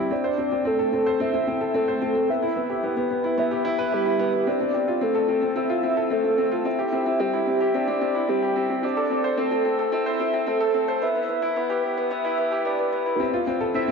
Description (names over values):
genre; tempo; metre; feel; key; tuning
electronica; 110 BPM; 4/4; straight; unclear; A4 = 440 Hz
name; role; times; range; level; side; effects
warm velvety synth lead; melody; 0.0-13.9 s; G4 to E5; -24 LUFS; right 1 dB; chorus, tremolo, vintage 12-bit sampler grit
clear grand piano; riff; 0.0-13.9 s; B3 to C5; -24 LUFS; left 1 dB; ping-pong delay
room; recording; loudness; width
wet lush hall reverb, RT60 3.0 s; dark, warm production, high-pass filter, nothing above 7.6 kHz; -21 LUFS; side -5 dB against mid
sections
0.0-13.2 A section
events
build-up 0.0-13.2; filter sweep 0.0-13.2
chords
0.1 Am; 2.3 Em; 4.5 Dm7; 6.7 Cadd9; 8.8 Am; 11.0 Em; 13.2 C6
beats
| 0.11 0.66 1.20 1.75 | 2.29 2.84 3.38 3.93 | 4.47 5.02 5.56 6.11 | 6.66 7.20 7.75 8.29 | 8.84 9.38 9.93 10.47 | 11.02 11.56 12.11 12.65 | 13.20 13.75